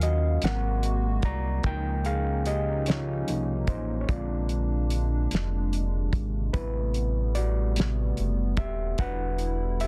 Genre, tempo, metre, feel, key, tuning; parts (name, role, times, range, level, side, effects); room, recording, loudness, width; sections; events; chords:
slow six-eight R&B; 49 BPM (dotted quarters); 6/8; straight; A4 = 440 Hz
overdriven reed electric piano; accompaniment; 0.0-9.9 s; C3 to A#5; -34 LUFS; equal
hollow soft pad; sustained chords; 0.0-9.9 s; B#2 to E#5; -38 LUFS; equal; chorus
smooth synth bass; bass; 0.0-9.9 s; D#1 to D#2; -30 LUFS; equal
cloth-damped thuddy drum kit; drums; 0.0-9.9 s; hi-hat, kick drum, snare drum; -31 LUFS; equal
light reverb; dense, heavily limited modern master; -27 LUFS; mono
0.0-9.9 A section
reed electric piano solo 0.0-9.9
0.4 G#9; 1.6 C#69; 4.1 A#9; 6.5 Am9; 9.0 Em7